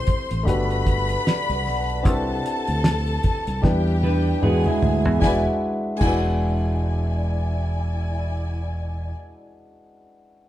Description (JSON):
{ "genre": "lush 1970s-style soul", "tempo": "76 BPM", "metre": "4/4", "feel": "swing 58% on 16ths", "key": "unclear", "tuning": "A4 = 440 Hz", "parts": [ { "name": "warm studio string section", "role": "second line", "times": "0.0-9.1 s", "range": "E4 to C6", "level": "-28 LUFS", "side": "left 3 dB", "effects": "none" }, { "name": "dark baby grand piano", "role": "accompaniment", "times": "0.0-10.5 s", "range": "G3 to C5", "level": "-27 LUFS", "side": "left 1 dB", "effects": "none" }, { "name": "fingered electric bass", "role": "bass", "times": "0.1-9.1 s", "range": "E1 to E2", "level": "-24 LUFS", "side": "equal", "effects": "none" }, { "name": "cloth-damped thuddy drum kit", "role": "drums", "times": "0.1-6.3 s", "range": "crash cymbal, hi-hat, kick drum, snare drum, toms", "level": "-23 LUFS", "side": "equal", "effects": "none" }, { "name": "vibraphone with soft mallets", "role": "texture", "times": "1.3-8.3 s", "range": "D5 to A5", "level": "-33 LUFS", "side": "right 2 dB", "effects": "none" }, { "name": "electric guitar through a small old amp", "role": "riff", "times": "4.0-5.2 s", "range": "G#3 to B4", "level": "-25 LUFS", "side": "right 3 dB", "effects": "none" } ], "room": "moderate large studio reverb, RT60 1.4 s", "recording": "band playing live in one room", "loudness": "-20 LUFS", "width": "side -13 dB against mid", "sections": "0.0-5.2 A section; 5.2-8.4 B section", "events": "drum fill 3.6-5.2", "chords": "0.5 Gmaj7; 2.1 Cmaj7; 3.6 Em7; 4.4 E7" }